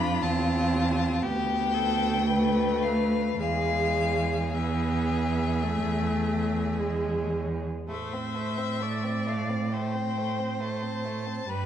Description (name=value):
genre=classical, slow romantic movement for string quartet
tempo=52-69 BPM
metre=4/4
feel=rubato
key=A minor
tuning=A4 = 439 Hz
part: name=clear violin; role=melody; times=0.0-11.7 s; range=E5 to B5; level=-32 LUFS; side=left 7 dB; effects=none
part: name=rich violin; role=second line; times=0.0-11.7 s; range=G3 to B4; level=-33 LUFS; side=left 4 dB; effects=none
part: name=rich viola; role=accompaniment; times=0.0-11.7 s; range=G#3 to D5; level=-31 LUFS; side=right 1 dB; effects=none
part: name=rich cello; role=bass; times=0.0-11.7 s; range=D2 to A2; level=-29 LUFS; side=right 3 dB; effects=none
room=wet recital hall reverb, RT60 1.5 s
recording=dark, warm production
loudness=-25 LUFS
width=side -10 dB against mid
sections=0.0-7.9 A section; 7.9-11.7 B section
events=none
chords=0.0 Fmaj7; 1.2 G9/D; 3.4 E; 7.9 Am